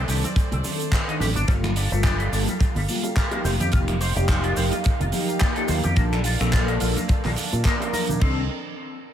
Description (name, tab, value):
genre	nu-disco, nu disco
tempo	107 BPM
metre	4/4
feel	swing 56% on 16ths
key	C dorian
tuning	A4 = 441 Hz
part	mellow synth brass	accompaniment	0.0-8.4 s	Eb3 to Bb4	-28 LUFS	left 1 dB	chorus, analog delay
part	dark studio violin section	sustained chords	0.0-8.5 s	A3 to A5	-34 LUFS	right 3 dB	sidechain pumping, low-pass filter
part	electric guitar with an envelope filter	riff	0.0-8.5 s	Bb2 to C5	-31 LUFS	left 2 dB	analog chorus, low-pass filter, analog delay
part	fingered electric bass	bass	0.0-8.5 s	F1 to Bb2	-24 LUFS	equal	none
part	tight funk drum kit	drums	0.1-8.3 s	crash cymbal, finger snaps, handclaps, hi-hat, shaker	-29 LUFS	right 2 dB	small room reverb, analog delay
part	congas and bongos	percussion	0.2-8.2 s	none	-32 LUFS	right 2 dB	none
part	kick drum	drums	0.4-8.3 s	none	-21 LUFS	equal	small room reverb
room	light reverb, small room ambience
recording	echo-heavy mix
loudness	-20 LUFS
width	side -10 dB against mid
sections	0.0-8.2 A section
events	filter sweep on clean electric guitar 0.0-8.2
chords	0.0 Cm69; 1.5 Gm9; 3.4 F9sus4; 6.0 Bbmaj7; 8.2 Cm69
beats	0.36 0.93 | 1.49 2.05 2.61 3.17 | 3.73 4.29 4.85 5.41 | 5.97 6.53 7.09 7.65 | 8.21